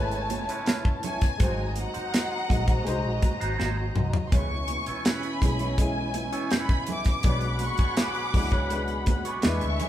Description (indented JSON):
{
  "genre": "lush 1970s-style soul",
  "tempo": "82 BPM",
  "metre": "4/4",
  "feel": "straight",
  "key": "unclear",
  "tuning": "A4 = 440 Hz",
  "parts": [
    { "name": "warm studio violin section", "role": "melody", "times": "0.0-8.7 s", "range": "F#5 to D6", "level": "-33 LUFS", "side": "left 1 dB", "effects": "none" },
    { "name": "dark studio string section", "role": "second line", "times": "0.0-9.9 s", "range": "C#4 to C#6", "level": "-33 LUFS", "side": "left 1 dB", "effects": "none" },
    { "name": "warm baby grand piano", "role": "accompaniment", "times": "0.0-9.9 s", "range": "G#3 to D#5", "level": "-36 LUFS", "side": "left 2 dB", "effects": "none" },
    { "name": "percussive tonewheel organ", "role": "sustained chords", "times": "0.0-9.9 s", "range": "B2 to F#4", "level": "-39 LUFS", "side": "equal", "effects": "slow rotary speaker, chorus vibrato" },
    { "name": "vintage muted fingered electric bass", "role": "bass", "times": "0.0-9.8 s", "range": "G#1 to E2", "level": "-31 LUFS", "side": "equal", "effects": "none" },
    { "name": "clean electric guitar", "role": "riff", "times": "0.1-9.9 s", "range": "G#3 to E5", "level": "-36 LUFS", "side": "right 4 dB", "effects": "wah, spring reverb" },
    { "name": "tight funk drum kit", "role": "drums", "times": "0.1-9.9 s", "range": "hi-hat, kick drum, snare drum, toms", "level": "-25 LUFS", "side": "equal", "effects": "none" },
    { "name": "congas", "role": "percussion", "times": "0.3-9.9 s", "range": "none", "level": "-38 LUFS", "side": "right 4 dB", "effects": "none" }
  ],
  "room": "moderate large studio reverb, RT60 1.3 s",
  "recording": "band playing live in one room",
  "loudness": "-24 LUFS",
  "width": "side -12 dB against mid",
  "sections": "0.0-9.9 A section",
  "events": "drum fill 3.6-4.3",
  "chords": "0.0 Amaj9; 1.4 G#7; 4.3 C#m7; 7.2 Bm69",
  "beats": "0.67 | 1.40 2.13 2.86 3.60 | 4.33 5.05 5.79 6.52 | 7.25 7.98 8.71 9.44"
}